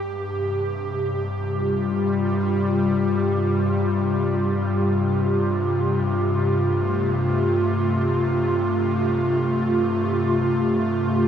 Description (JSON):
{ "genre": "ambient", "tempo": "free time", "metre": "none", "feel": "none", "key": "unclear", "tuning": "A4 = 443 Hz", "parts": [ { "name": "airy breathy pad", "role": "solo", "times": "0.0-11.3 s", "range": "G2 to G4", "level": "-20 LUFS", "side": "equal", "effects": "chorus, tape echo" } ], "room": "wet huge ambient reverb, RT60 7.3 s", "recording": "in a vast, echoing space", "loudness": "-20 LUFS", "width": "side -8 dB against mid", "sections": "0.0-11.3 A section", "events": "none", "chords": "0.0 Fsus2/G" }